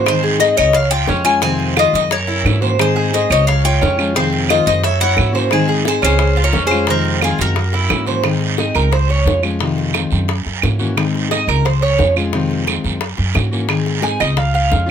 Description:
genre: latin, Cuban son and guajira.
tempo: 176 BPM.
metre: 4/4.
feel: straight.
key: Ab major.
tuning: A4 = 440 Hz.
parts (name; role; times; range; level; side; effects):
fingerpicked plugged-in steel-string acoustic guitar; accompaniment; 0.0-14.9 s; C3 to Ab4; -20 LUFS; left 4 dB; none.
Cuban tres; arpeggios; 0.0-14.9 s; C4 to Ab5; -19 LUFS; right 4 dB; none.
upright bass; bass; 0.0-14.9 s; Db2 to Ab2; -18 LUFS; equal; none.
Cuban tres; melody; 0.1-8.0 s; Ab4 to Ab5; -17 LUFS; left 4 dB; none.
bongos; percussion; 0.1-14.9 s; none; -24 LUFS; left 5 dB; none.
claves; percussion; 0.1-14.4 s; none; -21 LUFS; right 9 dB; none.
guiro; percussion; 0.1-14.9 s; none; -26 LUFS; right 8 dB; none.
nylon-string guitar; second line; 2.1-8.0 s; Eb4 to Db5; -24 LUFS; right 2 dB; none.
room: light reverb.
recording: close, detailed microphones.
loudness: -13 LUFS.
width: side -8 dB against mid.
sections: 0.0-8.2 A section; 8.2-14.9 B section.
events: Cuban tres solo 8.2-14.9.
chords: 0.1 Ab; 0.7 Db; 1.4 Fm7; 2.1 Gb7; 2.8 Ab; 3.5 Db; 4.2 Fm7; 4.8 Gb7; 5.5 Ab; 6.2 Db; 6.9 Fm7; 7.6 Gb7; 8.2 Ab; 8.9 Db; 9.6 Fm7; 10.3 Gb7; 11.0 Ab; 11.7 Db; 12.3 Fm7; 13.0 Gb7; 13.7 Ab; 14.4 Db.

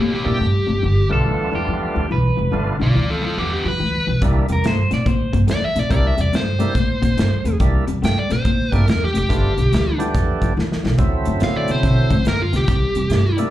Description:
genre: electric blues shuffle.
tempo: 142 BPM.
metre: 4/4.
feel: swing 64% on 8ths.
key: G mixolydian.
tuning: A4 = 439 Hz.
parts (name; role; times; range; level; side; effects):
dark smooth lead guitar; melody; 0.0-13.4 s; Bb3 to G5; -22 LUFS; equal; overdrive, slapback echo.
electric guitar through a small old amp; riff; 0.0-13.5 s; G2 to C4; -23 LUFS; left 3 dB; analog chorus, slapback echo.
upright bass; bass; 0.0-13.4 s; F1 to C3; -20 LUFS; equal; none.
percussive tonewheel organ; accompaniment; 0.2-13.5 s; F#3 to G4; -24 LUFS; right 3 dB; slow rotary speaker, overdrive, slapback echo.
electric guitar at the edge of break-up; second line; 1.1-5.4 s; G4 to D5; -25 LUFS; right 2 dB; slapback echo.
natural country drum kit; drums; 4.2-13.5 s; hi-hat, kick drum, snare drum; -22 LUFS; equal; none.
room: little or no reverb.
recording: live gig heard through the venue's PA, club reverb.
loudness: -16 LUFS.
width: side -13 dB against mid.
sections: 0.0-13.5 A section.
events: drum fill 10.6-11.0.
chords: 0.0 C7; 0.8 G7; 4.2 C7; 9.3 G7; 11.0 D7; 12.7 C7.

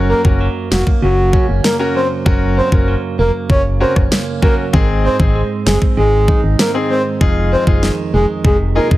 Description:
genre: dancehall.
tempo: 97 BPM.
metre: 4/4.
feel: straight.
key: unclear.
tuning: A4 = 440 Hz.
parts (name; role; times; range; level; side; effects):
clear concert grand piano; accompaniment; 0.0-9.0 s; C4 to Bb4; -20 LUFS; left 2 dB; sidechain pumping.
direct-recorded clean electric guitar; arpeggios; 0.0-9.0 s; F2 to Eb4; -21 LUFS; right 5 dB; none.
organ-like FM bass; bass; 0.0-9.0 s; F1 to Ab1; -16 LUFS; equal; none.
breathy flute-like synth lead; melody; 0.1-8.9 s; Gb4 to Db5; -18 LUFS; equal; chorus, digital delay.
pop drum kit; drums; 0.2-9.0 s; kick drum, rim click, snare drum; -14 LUFS; equal; none.
room: little or no reverb.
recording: heavily compressed radio sound.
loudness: -12 LUFS.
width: side -16 dB against mid.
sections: 0.0-9.0 A section.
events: break 0.0-4.7.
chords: 0.0 Gb; 4.7 Ab; 7.2 Fm7.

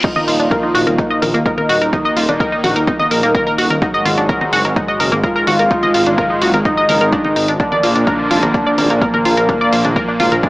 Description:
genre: melodic techno.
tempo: 127 BPM.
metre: 4/4.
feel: straight.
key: Eb harmonic minor.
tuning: A4 = 438 Hz.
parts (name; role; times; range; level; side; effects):
fat analog lead; melody; 0.0-10.5 s; Ab3 to Gb4; -18 LUFS; equal; lush chorus, tape echo.
analog pluck; arpeggios; 0.0-10.5 s; Bb3 to Eb6; -16 LUFS; equal; chorus, sidechain pumping, digital delay.
brassy analog pad; stabs; 0.0-10.5 s; Ab2 to Eb4; -20 LUFS; right 1 dB; chorus, sidechain pumping, digital delay.
electronic kick drum; drums; 0.0-10.5 s; none; -19 LUFS; equal; studio reverb.
house drum kit; drums; 0.0-10.5 s; congas, crash cymbal, hi-hat; -23 LUFS; left 1 dB; studio reverb.
dark detuned saw bass; bass; 0.3-10.4 s; Eb1 to Bb1; -21 LUFS; equal; sidechain pumping.
room: light reverb.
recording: AM radio sound.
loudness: -12 LUFS.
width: side -20 dB against mid.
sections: 0.0-10.5 A section.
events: drop 0.0-10.5.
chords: 0.0 Ebmadd9; 3.8 Ab5; 7.6 Bb.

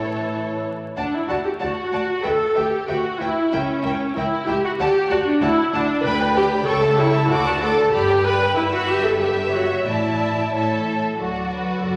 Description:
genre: quick classical-period movement for string orchestra.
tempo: 94 BPM.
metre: 2/4.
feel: straight.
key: D major.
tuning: A4 = 439 Hz.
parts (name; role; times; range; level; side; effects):
warm studio violin section; melody; 0.0-12.0 s; F#4 to D6; -30 LUFS; equal; none.
rich studio violin section; second line; 0.0-12.0 s; F#4 to B5; -30 LUFS; equal; none.
warm studio viola section; accompaniment; 0.0-12.0 s; E3 to D5; -22 LUFS; equal; none.
dark chamber cello section; bass; 0.0-12.0 s; C#2 to A3; -32 LUFS; equal; none.
warm studio double bass section; bass; 0.0-12.0 s; F#1 to D2; -32 LUFS; equal; none.
room: wet scoring stage reverb, RT60 1.8 s.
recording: vinyl crackle.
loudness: -20 LUFS.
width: mono.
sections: 1.0-11.2 A section.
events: none.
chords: 0.0 A; 1.0 D; 2.2 Em7/D; 3.5 C#dim7; 4.8 D; 6.0 G/D; 6.7 A7/C#; 7.3 D; 7.9 G; 8.6 Em/G; 9.9 Asus4; 11.2 D.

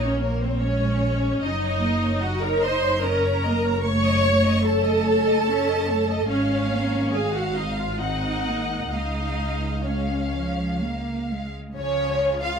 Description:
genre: classical, slow romantic movement for string orchestra.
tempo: 62-76 BPM.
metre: 3/4.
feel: rubato.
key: Db major.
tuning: A4 = 442 Hz.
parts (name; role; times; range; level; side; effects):
rich studio violin section; melody; 0.0-12.6 s; Db5 to Gb5; -30 LUFS; left 2 dB; none.
rich chamber violin section; second line; 0.0-12.6 s; Db4 to Db6; -32 LUFS; right 1 dB; none.
warm studio viola section; accompaniment; 0.0-12.6 s; F3 to Db5; -24 LUFS; equal; none.
rich studio cello section; bass; 0.0-12.6 s; Db3 to Eb4; -28 LUFS; right 1 dB; none.
warm studio double bass section; bass; 0.0-12.6 s; Gb1 to Db2; -27 LUFS; equal; none.
room: light reverb.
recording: minimal, uncompressed stereo recording.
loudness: -21 LUFS.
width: side -6 dB against mid.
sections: 0.0-11.8 A section.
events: none.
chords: 0.0 Bbm; 1.4 Ebm7/Gb; 3.8 Ebm7b5/Gb; 6.3 Db/Ab; 8.0 Ab7; 8.9 Db.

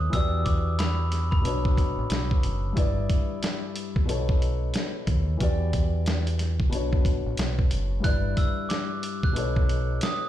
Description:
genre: hip hop, boom-bap hip-hop.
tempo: 91 BPM.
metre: 4/4.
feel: swing 62% on 16ths.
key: B minor.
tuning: A4 = 440 Hz.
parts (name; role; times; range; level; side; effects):
dark grand piano; accompaniment; 0.0-10.3 s; G2 to D5; -31 LUFS; left 4 dB; high-pass filter, low-pass filter.
deep dub fingered electric bass; bass; 0.0-10.0 s; F#1 to E2; -27 LUFS; right 1 dB; none.
glockenspiel with hard plastic mallets; melody; 0.1-2.1, 8.0-10.3 s; B5 to F#6; -33 LUFS; right 1 dB; high-pass filter, low-pass filter, ping-pong delay.
dusty soul sampler-style drum kit; drums; 0.1-10.2 s; hi-hat, kick drum, snare drum; -25 LUFS; equal; none.
room: studio ambience.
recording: played on a big sound system in a bare room, stone room reverb.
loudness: -23 LUFS.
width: side -12 dB against mid.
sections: 0.0-10.3 A section.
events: none.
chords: 0.1 Em7; 1.4 Bmadd9; 2.8 G6; 4.1 B7; 5.4 Em7; 6.7 Bmadd9; 8.0 G6; 9.4 B7.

